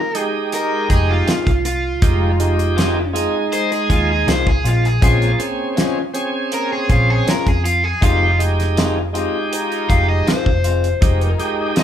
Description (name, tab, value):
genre	straight-eighth soul blues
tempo	80 BPM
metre	4/4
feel	straight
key	F minor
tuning	A4 = 440 Hz
part	overdriven semi-hollow guitar	melody	0.0-11.8 s	F4 to F5	-21 LUFS	equal	none
part	bright tonewheel organ	accompaniment	0.1-11.8 s	Ab3 to Ab4	-21 LUFS	right 3 dB	slow rotary speaker, overdrive
part	damped 70s drum kit	drums	0.1-11.8 s	hi-hat, kick drum, snare drum	-18 LUFS	equal	none
part	dark chamber string section	sustained chords	0.5-11.8 s	Ab3 to Ab4	-30 LUFS	left 3 dB	none
part	vintage muted fingered electric bass	bass	0.9-11.3 s	F1 to F2	-18 LUFS	equal	none
part	electric guitar through a small old amp	stabs	1.3-11.8 s	Eb3 to F4	-25 LUFS	left 7 dB	none
room	light reverb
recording	band playing live in one room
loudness	-15 LUFS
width	side -10 dB against mid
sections	0.0-11.8 A section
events	overdriven electric guitar solo 0.0-11.8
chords	0.0 Fm7; 5.0 Bbm7; 8.0 Fm7